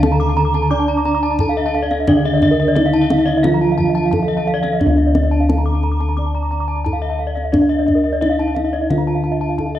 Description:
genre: Balinese gamelan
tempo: 88 BPM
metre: 4/4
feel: straight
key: D pelog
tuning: A4 = 440 Hz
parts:
  - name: gamelan-type bronze metallophone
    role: melody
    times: 0.0-9.8 s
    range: D4 to D5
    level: -21 LUFS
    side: equal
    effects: none
  - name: gamelan-type bronze metallophone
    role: accompaniment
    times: 0.0-4.8 s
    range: D3 to D4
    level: -20 LUFS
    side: right 2 dB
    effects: none
  - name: gamelan-type bronze metallophone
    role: arpeggios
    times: 0.0-9.8 s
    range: D5 to D6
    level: -23 LUFS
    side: left 4 dB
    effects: none
  - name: gamelan-type bronze metallophone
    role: arpeggios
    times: 0.0-9.8 s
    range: Bb4 to D6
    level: -24 LUFS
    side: right 5 dB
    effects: none
  - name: gamelan-type bossed gongs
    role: bass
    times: 0.0-9.8 s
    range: D2 to Eb4+35c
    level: -18 LUFS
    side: left 1 dB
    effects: none
  - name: kendang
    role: percussion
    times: 0.0-9.7 s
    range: none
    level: -24 LUFS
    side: equal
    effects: none
room: moderate recital hall reverb, RT60 1.4 s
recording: worn, warbling old tape, cassette tape, warbly pitch drift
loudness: -14 LUFS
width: side -12 dB against mid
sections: 0.0-4.8 A section; 4.8-9.8 A section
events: none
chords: none

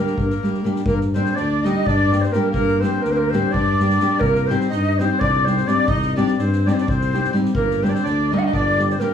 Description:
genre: balkan folk, Balkan wedding band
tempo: 252 BPM (eighths)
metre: 7/8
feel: straight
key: G minor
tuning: A4 = 440 Hz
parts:
  - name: breathy ney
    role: melody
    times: 0.0-9.1 s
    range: Bb4 to F#5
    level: -22 LUFS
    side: equal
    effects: slapback echo
  - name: accordion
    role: second line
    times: 0.0-9.1 s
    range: Bb3 to F#4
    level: -27 LUFS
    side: right 1 dB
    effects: none
  - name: nylon-string guitar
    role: accompaniment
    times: 0.0-9.1 s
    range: G3 to G4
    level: -21 LUFS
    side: left 1 dB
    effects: none
  - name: soft-mallet drum kit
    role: percussion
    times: 0.1-9.0 s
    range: kick drum, snare drum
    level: -27 LUFS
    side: left 1 dB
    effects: none
  - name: dark tuba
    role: bass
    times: 0.2-8.9 s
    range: G1 to G2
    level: -22 LUFS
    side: left 1 dB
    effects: none
room: moderate small room ambience, RT60 0.5 s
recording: small room reverb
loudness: -16 LUFS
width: side -8 dB against mid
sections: 0.9-9.1 A section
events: speeding up 0.0-9.1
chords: 0.0 Gm; 4.2 Cm; 7.5 Gm

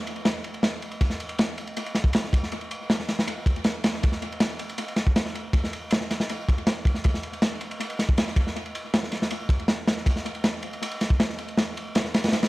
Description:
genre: drum and bass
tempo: 159 BPM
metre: 4/4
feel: straight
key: none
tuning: none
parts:
  - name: crunchy breakbeat drum kit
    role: drums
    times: 0.1-12.5 s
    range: kick drum, ride cymbal, snare drum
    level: -23 LUFS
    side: equal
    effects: analog delay
room: little or no reverb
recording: echo-heavy mix, vinyl crackle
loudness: -23 LUFS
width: side -19 dB against mid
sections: 0.0-12.5 A section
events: none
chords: none

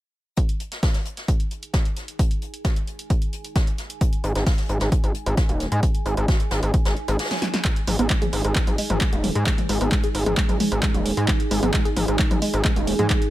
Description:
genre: driving peak-time techno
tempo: 132 BPM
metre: 4/4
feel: straight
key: unclear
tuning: A4 = 440 Hz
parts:
  - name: electronic kick drum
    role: drums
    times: 0.4-13.2 s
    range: none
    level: -21 LUFS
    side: equal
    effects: none
  - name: jazz brush drum kit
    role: drums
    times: 0.4-7.6 s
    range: hi-hat, snare drum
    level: -32 LUFS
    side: left 1 dB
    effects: sidechain pumping on hats, high-pass filter on hats, high-pass filter on snare, high-pass filter on room
  - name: punchy analog drum machine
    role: drums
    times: 0.4-13.3 s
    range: handclaps, hi-hat, snare drum, toms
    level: -27 LUFS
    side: equal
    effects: none
  - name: deep dark ambient pad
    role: texture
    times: 1.6-13.3 s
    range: D#4 to G#5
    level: -31 LUFS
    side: right 2 dB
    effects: chorus, built-in reverb, sidechain pumping
  - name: gritty driven synth bass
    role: bass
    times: 4.2-13.1 s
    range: D#1 to G#2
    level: -23 LUFS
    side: equal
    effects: sidechain pumping
  - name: woody wave-folded pluck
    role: riff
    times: 7.6-13.2 s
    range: F#3 to G#4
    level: -27 LUFS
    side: right 1 dB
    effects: chorus, sidechain pumping
room: little or no reverb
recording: none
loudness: -20 LUFS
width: side -15 dB against mid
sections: 0.4-7.6 A section; 7.6-13.3 B section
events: kick drops out 7.2-7.6; drum fill 7.3-7.6; filter sweep on synth arpeggio sound 7.6-13.3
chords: 0.4 G#5

